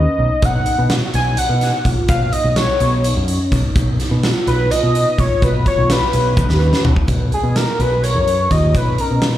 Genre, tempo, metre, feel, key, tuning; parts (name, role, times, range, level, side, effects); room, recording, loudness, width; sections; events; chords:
progressive instrumental, band music in an uneven meter; 252 BPM (eighths); 7/8; straight; B lydian; A4 = 439 Hz
octave-doubled lead; melody; 0.0-9.2 s; G#4 to G#5; -19 LUFS; left 1 dB; chorus, slapback echo, ping-pong delay
vibraphone with medium hard mallets; arpeggios; 0.0-9.4 s; B3 to A#4; -25 LUFS; right 1 dB; slapback echo
picked electric bass; bass; 0.0-9.4 s; B1 to B2; -17 LUFS; equal
big rock drum kit; drums; 0.4-9.3 s; hi-hat, kick drum, snare drum, toms; -19 LUFS; equal
tube shaker; percussion; 0.4-9.1 s; -39 LUFS; left 3 dB
light reverb; live gig heard through the venue's PA, club reverb; -14 LUFS; side -12 dB against mid
0.0-7.1 A section; 7.1-9.4 B section
drum fill 6.4-7.1; analog synth lead solo 7.1-9.4
0.0 Badd9(#11); 7.1 Bmaj7